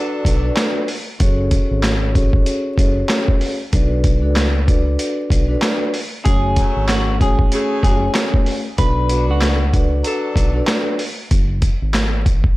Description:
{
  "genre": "hip hop, boom-bap hip-hop",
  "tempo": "95 BPM",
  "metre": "4/4",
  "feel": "swing 60% on 16ths",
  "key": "F# minor",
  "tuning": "A4 = 440 Hz",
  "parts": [
    { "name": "semi-hollow electric guitar", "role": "melody", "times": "0.0-0.7, 6.2-10.8 s", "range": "F#4 to B4", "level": "-25 LUFS", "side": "equal", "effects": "wide subtle chorus, high-pass filter, low-pass filter, analog delay" },
    { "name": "vibraphone with soft mallets", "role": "accompaniment", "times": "0.0-11.0 s", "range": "A3 to D5", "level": "-22 LUFS", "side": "left 1 dB", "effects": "high-pass filter, low-pass filter" },
    { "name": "warm saxophone section", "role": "stabs", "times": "0.0-0.5, 6.6-10.6 s", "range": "C#3 to A4", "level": "-27 LUFS", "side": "equal", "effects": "high-pass filter, low-pass filter, analog delay" },
    { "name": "boom bap sampler-style drum kit", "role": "drums", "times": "0.2-12.6 s", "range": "handclaps, hi-hat, kick drum, snare drum", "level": "-17 LUFS", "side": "equal", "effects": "none" },
    { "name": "fingered electric bass", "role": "bass", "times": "0.3-12.5 s", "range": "F#1 to C#2", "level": "-19 LUFS", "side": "equal", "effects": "tube saturation" }
  ],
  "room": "little or no reverb",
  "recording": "dry, gritty hardware recording, vinyl crackle",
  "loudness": "-15 LUFS",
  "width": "side -19 dB against mid",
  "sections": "0.0-12.6 A section",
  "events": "none",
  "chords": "0.0 Bm7; 1.2 F#madd9; 3.7 Bm7; 6.3 F#madd9; 8.8 Bm7; 11.3 F#sus2"
}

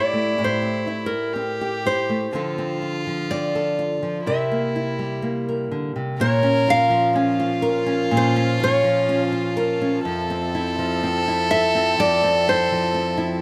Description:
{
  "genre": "acoustic folk-pop ballad",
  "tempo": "62 BPM",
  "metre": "4/4",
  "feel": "straight",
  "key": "unclear",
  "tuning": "A4 = 440 Hz",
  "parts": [
    { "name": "nylon-string guitar", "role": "melody", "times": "0.0-13.4 s", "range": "Bb4 to F5", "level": "-24 LUFS", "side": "equal", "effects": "none" },
    { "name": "rich violin", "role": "second line", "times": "0.0-13.4 s", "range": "E4 to Bb4", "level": "-28 LUFS", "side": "equal", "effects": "none" },
    { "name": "nylon-string guitar", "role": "accompaniment", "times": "0.0-13.4 s", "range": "F2 to Bb4", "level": "-26 LUFS", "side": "equal", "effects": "none" },
    { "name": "warm chamber string section", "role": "sustained chords", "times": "6.2-13.4 s", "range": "F3 to A5", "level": "-34 LUFS", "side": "equal", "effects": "none" }
  ],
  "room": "light reverb",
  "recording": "close, detailed microphones",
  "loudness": "-21 LUFS",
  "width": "mono",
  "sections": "0.0-6.2 A section; 6.2-13.4 B section",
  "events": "none",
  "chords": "0.0 Am7; 2.3 Dm7; 4.2 C7; 6.2 Bbm; 10.0 Fmaj7"
}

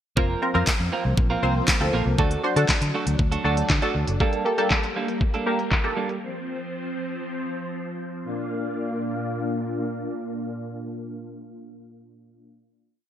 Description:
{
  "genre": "dance-pop",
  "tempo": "119 BPM",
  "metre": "4/4",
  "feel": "straight",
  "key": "Bb major",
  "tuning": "A4 = 440 Hz",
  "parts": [
    { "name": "punchy chord stab", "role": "accompaniment", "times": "0.2-6.2 s", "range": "Bb3 to C5", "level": "-26 LUFS", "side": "equal", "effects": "chorus, phaser, sidechain pumping" },
    { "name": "string machine, violins", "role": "sustained chords", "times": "0.2-12.5 s", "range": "Bb2 to F5", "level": "-30 LUFS", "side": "left 1 dB", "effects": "ensemble chorus, sidechain pumping" },
    { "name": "clean electric guitar", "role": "riff", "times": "0.2-6.2 s", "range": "G3 to Bb4", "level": "-29 LUFS", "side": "right 5 dB", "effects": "lush chorus" },
    { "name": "vintage muted fingered electric bass", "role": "bass", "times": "0.2-4.2 s", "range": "F1 to D3", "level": "-25 LUFS", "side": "equal", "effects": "sidechain pumping" },
    { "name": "pop drum kit", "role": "drums", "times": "0.2-6.2 s", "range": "handclaps, hi-hat, kick drum, snare drum", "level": "-23 LUFS", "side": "equal", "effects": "gated reverb" }
  ],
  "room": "light reverb, digital ambience",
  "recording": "bright 1980s-style digital production, low-pass filter",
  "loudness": "-22 LUFS",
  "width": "side -10 dB against mid",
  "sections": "0.2-8.2 bridge; 8.2-12.3 final chord",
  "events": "filter sweep 0.2-8.2",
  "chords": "0.2 Fsus4; 2.2 D; 4.2 Gmadd9; 6.2 F5; 8.2 Bb"
}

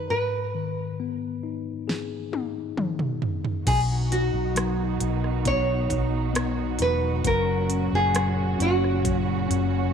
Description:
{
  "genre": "pop ballad",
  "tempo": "67 BPM",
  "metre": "4/4",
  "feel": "straight",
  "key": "B major",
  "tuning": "A4 = 439 Hz",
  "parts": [
    { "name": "nylon-string guitar", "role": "melody", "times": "0.0-9.5 s", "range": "F#4 to C#5", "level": "-27 LUFS", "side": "equal", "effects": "tape echo" },
    { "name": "mellow tine electric piano", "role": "accompaniment", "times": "0.0-9.9 s", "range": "F#2 to G#4", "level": "-29 LUFS", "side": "left 9 dB", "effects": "medium stereo tremolo" },
    { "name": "pop drum kit", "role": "drums", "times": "1.9-9.7 s", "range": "crash cymbal, hi-hat, kick drum, rim click, snare drum, toms", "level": "-29 LUFS", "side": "right 1 dB", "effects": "none" },
    { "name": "muted studio string section", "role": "sustained chords", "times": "3.7-9.9 s", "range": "A#2 to F#4", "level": "-30 LUFS", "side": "right 11 dB", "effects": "none" },
    { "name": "vintage muted fingered electric bass", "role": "bass", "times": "3.7-9.9 s", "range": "E1 to B1", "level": "-27 LUFS", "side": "right 1 dB", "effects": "none" }
  ],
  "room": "light reverb, digital ambience",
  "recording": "1960s-style stereo with parts hard left and right",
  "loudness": "-23 LUFS",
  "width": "side -7 dB against mid",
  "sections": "0.0-3.7 A section; 3.7-9.9 B section",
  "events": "drum fill 1.9-3.7; tine electric piano fill 9.5-9.9",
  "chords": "0.1 G#m; 3.7 B; 7.3 F#"
}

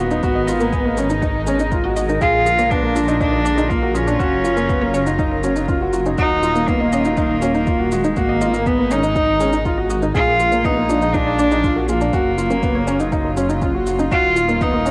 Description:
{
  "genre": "piano and strings electronica",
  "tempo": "121 BPM",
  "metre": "4/4",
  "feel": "straight",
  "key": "Eb minor",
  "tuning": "A4 = 440 Hz",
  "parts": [
    { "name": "rich cello", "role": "melody", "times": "0.0-14.9 s", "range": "Ab3 to F4", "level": "-22 LUFS", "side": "equal", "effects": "cassette tape" },
    { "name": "warm studio string section", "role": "sustained chords", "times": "0.0-14.9 s", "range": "Bb2 to Bb4", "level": "-29 LUFS", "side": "equal", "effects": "sidechain pumping, cassette tape" },
    { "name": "analog pluck", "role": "arpeggios", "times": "0.0-14.9 s", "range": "Db4 to Ab5", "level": "-30 LUFS", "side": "equal", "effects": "none" },
    { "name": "dark grand piano", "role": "riff", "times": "0.0-14.9 s", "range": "Bb3 to Ab4", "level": "-23 LUFS", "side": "equal", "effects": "cassette tape" },
    { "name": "dark detuned saw bass", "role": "bass", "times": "0.0-14.9 s", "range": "Eb1 to Bb1", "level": "-27 LUFS", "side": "equal", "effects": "sidechain pumping" },
    { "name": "shaker", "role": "drums", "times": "0.1-14.9 s", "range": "none", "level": "-40 LUFS", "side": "equal", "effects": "overdrive, cassette tape" },
    { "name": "electronic kick drum", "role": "drums", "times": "0.2-14.7 s", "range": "none", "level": "-25 LUFS", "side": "equal", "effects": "overdrive, cassette tape" }
  ],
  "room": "moderate spring reverb, RT60 1.3 s",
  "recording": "home recording on cassette",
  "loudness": "-18 LUFS",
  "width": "mono",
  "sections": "0.0-14.9 A section",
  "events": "none",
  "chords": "0.2 Abmadd9; 2.2 Bb7; 4.2 Gbmaj7; 6.2 Ebmadd9; 8.2 Abmadd9; 10.1 Bb7; 12.1 Gbmaj7; 14.1 Ebmadd9"
}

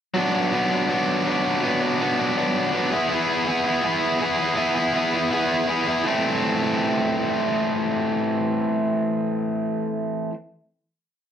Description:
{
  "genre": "rock",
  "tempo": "163 BPM",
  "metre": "4/4",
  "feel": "straight",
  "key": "A dorian",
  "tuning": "A4 = 438 Hz",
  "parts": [
    { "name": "cranked stack guitar", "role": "solo", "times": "0.1-10.3 s", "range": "E3 to G#4", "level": "-20 LUFS", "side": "equal", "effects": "overdrive" }
  ],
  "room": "wet studio reverb, RT60 0.6 s",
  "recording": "dark, warm production",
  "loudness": "-20 LUFS",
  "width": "side -9 dB against mid",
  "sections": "0.2-6.0 pre-chorus; 6.0-9.0 final chord",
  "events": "none",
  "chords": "0.2 Bm; 2.9 E; 6.0 Am"
}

